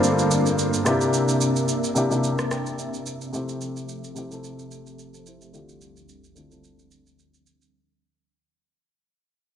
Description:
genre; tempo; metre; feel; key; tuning
amapiano; 109 BPM; 4/4; swing 55% on 16ths; unclear; A4 = 441 Hz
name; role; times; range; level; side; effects
warm grand piano; accompaniment; 0.0-7.8 s; G2 to G5; -24 LUFS; left 2 dB; low-pass filter
string machine, violins; sustained chords; 0.0-7.7 s; D2 to E5; -26 LUFS; right 1 dB; ensemble chorus, low-pass filter
electronic shaker and rim click; drums; 0.0-7.7 s; none; -30 LUFS; right 3 dB; none
room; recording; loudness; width
moderate lush hall reverb, RT60 1.8 s; none; -21 LUFS; side -9 dB against mid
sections
0.0-7.7 A section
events
fade-out 0.0-7.7; filter sweep 0.0-7.7; grand piano fill 2.2-3.3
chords
0.0 Gm11; 0.9 C9; 3.3 Fmaj9/C; 5.5 Dm11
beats
0.03 0.58 | 1.14 1.69 2.24 2.79 | 3.34 3.89 4.44 4.99 | 5.54 6.09 6.64 7.19

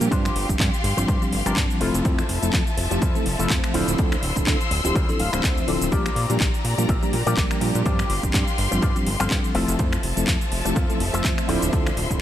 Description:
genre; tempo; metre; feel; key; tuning
filtered disco house; 124 BPM; 4/4; swing 56% on 16ths; unclear; A4 = 440 Hz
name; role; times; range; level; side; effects
bell-like tine electric piano; accompaniment; 0.0-12.2 s; F3 to A5; -26 LUFS; equal; phaser, sidechain pumping
clear symphonic string section; sustained chords; 0.0-12.2 s; F3 to E6; -30 LUFS; left 2 dB; sidechain pumping
fat analog bass; bass; 0.0-12.2 s; D1 to Bb2; -26 LUFS; equal; sidechain pumping
house drum kit; drums; 0.0-12.2 s; finger snaps, handclaps, hi-hat, shaker; -28 LUFS; equal; overdrive
electric guitar with an envelope filter; riff; 0.1-12.2 s; D4 to F5; -32 LUFS; left 3 dB; tremolo, sidechain pumping
electronic kick drum; drums; 0.1-12.2 s; none; -23 LUFS; equal; overdrive
room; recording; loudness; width
light reverb, digital ambience; none; -19 LUFS; side -12 dB against mid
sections
0.0-12.2 A section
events
clean electric guitar fill 5.0-5.9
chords
0.1 G7sus4; 1.8 Fmaj7; 3.7 Dm9; 5.9 Bb6; 7.9 G7sus4; 9.6 Fmaj7; 11.5 Dm9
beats
| 0.12 0.60 1.08 1.57 | 2.05 2.54 3.02 3.50 | 3.99 4.47 4.95 5.44 | 5.92 6.41 6.89 7.37 | 7.86 8.34 8.82 9.31 | 9.79 10.28 10.76 11.24 | 11.73 12.21

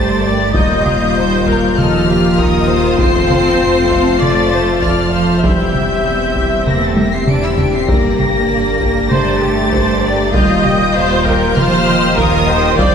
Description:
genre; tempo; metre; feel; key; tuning
cinematic, hybrid orchestral and electronic film score; 98 BPM; 4/4; straight; unclear; A4 = 440 Hz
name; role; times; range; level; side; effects
warm symphonic violin section; melody; 0.0-12.9 s; Eb6 to D7; -21 LUFS; left 3 dB; none
warm symphonic violin section; second line; 0.0-12.9 s; Eb4 to F5; -23 LUFS; left 4 dB; none
rich symphonic viola section; accompaniment; 0.0-12.9 s; G4 to E5; -18 LUFS; right 1 dB; none
mellow French horn section; sustained chords; 0.0-12.9 s; G3 to G4; -19 LUFS; left 4 dB; none
rich symphonic cello section; bass; 0.0-12.9 s; Eb3 to E4; -18 LUFS; right 2 dB; none
rich symphonic double bass section; bass; 0.0-12.9 s; Eb2 to G2; -20 LUFS; right 2 dB; none
saturated sub bass; bass; 0.0-12.9 s; Eb1 to G1; -25 LUFS; equal; none
solo taiko drums; drums; 0.5-12.9 s; none; -19 LUFS; equal; none
room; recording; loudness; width
wet concert hall reverb, RT60 2.2 s; heard from further back in the room; -11 LUFS; side -7 dB against mid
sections
0.0-12.9 A section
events
drum fill 7.0-7.9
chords
0.0 Gm; 0.5 Ebadd9; 3.0 F; 5.4 C/E; 7.9 Gm; 10.3 Ebadd9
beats
| 0.55 1.16 1.77 2.38 | 3.00 3.61 4.22 4.83 | 5.45 6.06 6.67 7.28 | 7.89 8.51 9.12 9.73 | 10.34 10.96 11.57 12.18 | 12.79

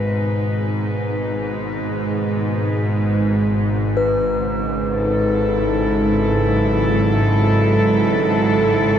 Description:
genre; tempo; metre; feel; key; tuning
dark ambient drone; free time; none; none; unclear; A4 = 440 Hz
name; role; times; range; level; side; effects
warm studio cello section; sustained chords; 0.0-9.0 s; G#2 to B4; -21 LUFS; right 1 dB; none
bowed-like drone; drone; 0.0-9.0 s; G#1 to G#2; -19 LUFS; equal; built-in reverb
bronze singing bowl; texture; 0.0-9.0 s; B4; -26 LUFS; left 2 dB; none
room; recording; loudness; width
wet cathedral reverb, RT60 6.0 s; none; -16 LUFS; side -9 dB against mid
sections
0.0-9.0 A section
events
none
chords
0.0 G#m; 4.0 F#m7/G#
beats
free time

